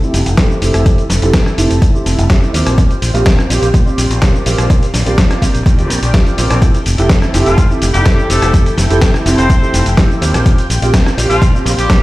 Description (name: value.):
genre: filtered disco house.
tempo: 125 BPM.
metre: 4/4.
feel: straight.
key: F major.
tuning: A4 = 440 Hz.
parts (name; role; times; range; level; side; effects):
dark baby grand piano; accompaniment; 0.0-12.0 s; A3 to G4; -18 LUFS; right 2 dB; phaser, vintage 12-bit sampler grit, sidechain pumping, low-pass filter.
string machine, full ensemble; sustained chords; 0.0-12.0 s; E4 to A5; -23 LUFS; equal; phaser, ensemble chorus, sidechain pumping, low-pass filter.
dusty soul sampler-style drum kit; drums; 0.0-12.0 s; cabasa, hi-hat, rim click, snare drum; -18 LUFS; left 1 dB; overdrive, sidechain pumping on hats, sidechain pumping on cymbals, sidechain pumping on perc.
fingered electric bass; bass; 0.1-12.0 s; F1 to F2; -15 LUFS; equal; sidechain pumping, low-pass filter.
electronic kick drum; drums; 0.4-12.0 s; none; -11 LUFS; equal; overdrive.
bright horn section; melody; 7.5-12.0 s; F3 to C5; -19 LUFS; left 1 dB; sidechain pumping, low-pass filter, tape echo.
room: little or no reverb.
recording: played on a big sound system in a bare room, stone room reverb.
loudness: -9 LUFS.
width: side -18 dB against mid.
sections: 0.0-12.0 A section.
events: filter sweep 0.0-12.0.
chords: 0.0 Fmaj9; 2.5 Eb69; 6.6 Fmaj9; 10.2 Eb69.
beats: 0.38 | 0.86 1.34 1.82 2.30 | 2.78 3.26 3.74 4.22 | 4.70 5.18 5.66 6.14 | 6.62 7.10 7.58 8.06 | 8.54 9.02 9.50 9.98 | 10.46 10.94 11.42 11.90.